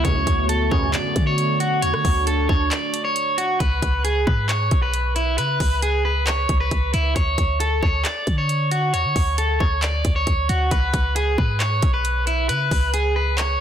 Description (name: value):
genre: hip hop, trap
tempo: 135 BPM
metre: 4/4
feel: half-time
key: C# phrygian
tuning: A4 = 440 Hz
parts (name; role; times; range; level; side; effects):
- electric guitar at the edge of break-up; melody; 0.0-13.6 s; E4 to D5; -22 LUFS; equal; spring reverb
- dark analog pad; sustained chords; 0.0-3.6 s; D3 to F#4; -28 LUFS; right 2 dB; chorus
- resonant sweep polysynth; stabs; 0.0-0.9 s; A1 to C#3; -28 LUFS; right 2 dB; chorus, ping-pong delay
- clean 808-style bass; bass; 0.0-13.6 s; B1 to D3; -22 LUFS; equal; none
- trap drum kit; drums; 0.0-13.5 s; handclaps, hi-hat, kick drum, rim click; -23 LUFS; equal; none
room: digital ambience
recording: dense, heavily limited modern master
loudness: -18 LUFS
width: side -9 dB against mid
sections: 0.0-3.6 A section; 3.6-13.6 B section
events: break 2.7-3.6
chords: 0.0 Dmaj7; 3.6 C#5; 7.2 Dmaj7(no3); 10.7 C#5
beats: | 0.05 0.49 0.94 1.38 | 1.82 2.27 2.71 3.16 | 3.60 4.05 4.49 4.94 | 5.38 5.83 6.27 6.71 | 7.16 7.60 8.05 8.49 | 8.94 9.38 9.82 10.27 | 10.71 11.16 11.60 12.05 | 12.49 12.94 13.38